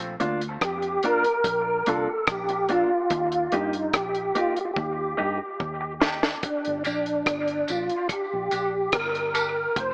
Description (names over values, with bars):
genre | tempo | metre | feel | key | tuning
dub reggae | 72 BPM | 4/4 | straight | G minor | A4 = 441 Hz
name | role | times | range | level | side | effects
vintage muted fingered electric bass | bass | 0.0-9.9 s | F1 to G2 | -36 LUFS | equal | none
deep reggae drum kit | drums | 0.0-9.9 s | hi-hat, kick drum, rim click, snare drum | -27 LUFS | equal | none
mellow electric guitar | accompaniment | 0.2-9.5 s | Bb3 to G4 | -30 LUFS | equal | high-pass filter, dub echo
tonewheel organ | melody | 0.6-9.9 s | D4 to C5 | -24 LUFS | equal | chorus vibrato, slow rotary speaker, dub echo
dark upright piano | stabs | 6.8-7.0 s | Bb3 to G4 | -40 LUFS | equal | high-pass filter, dub echo
tambourine and woodblock | percussion | 6.8-9.5 s | none | -36 LUFS | equal | high-pass filter on perc, dub echo
room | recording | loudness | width
light reverb, small room reverb | AM radio sound | -22 LUFS | side -30 dB against mid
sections
0.0-6.4 A section; 6.4-9.9 B section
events
break 0.0-6.4; filter sweep 3.1-9.8; drum fill 4.8-6.4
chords
0.0 Bb; 3.1 Eb; 6.4 Gm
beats
0.61 1.44 2.27 | 3.11 3.94 4.77 5.60 | 6.43 7.26 8.10 8.93 | 9.76